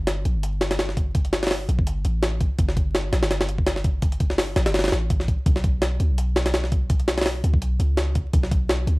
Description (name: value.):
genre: drum and bass, jungle.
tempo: 167 BPM.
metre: 4/4.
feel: swing 55% on 16ths.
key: unclear.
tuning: A4 = 441 Hz.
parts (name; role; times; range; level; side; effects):
warm 808-style bass; bass; 0.0-9.0 s; G1 to D2; -24 LUFS; equal; none.
jungle sampler-style drum kit; drums; 0.1-9.0 s; hi-hat, kick drum, snare drum; -22 LUFS; equal; studio reverb.
room: digital ambience.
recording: vinyl crackle.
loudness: -20 LUFS.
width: side -23 dB against mid.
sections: 0.0-9.0 A section.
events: none.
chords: none.